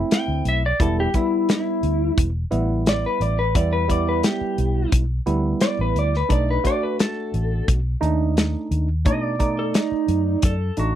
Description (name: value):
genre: straight-eighth soul blues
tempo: 87 BPM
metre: 4/4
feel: straight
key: E minor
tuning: A4 = 440 Hz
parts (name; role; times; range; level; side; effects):
- tine electric piano; accompaniment; 0.0-11.0 s; G3 to D5; -25 LUFS; right 3 dB; phaser
- vintage muted fingered electric bass; bass; 0.0-11.0 s; E1 to B2; -22 LUFS; equal; none
- clean lap steel guitar; melody; 0.1-11.0 s; D#4 to G5; -24 LUFS; left 1 dB; none
- warm soul drum kit; drums; 0.1-10.9 s; hi-hat, kick drum, snare drum; -20 LUFS; left 1 dB; none
room: light reverb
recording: dry, close 1970s-style studio recording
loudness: -19 LUFS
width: side -11 dB against mid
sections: 0.0-11.0 A section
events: none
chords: 0.0 Am; 0.8 Em; 6.3 B7#9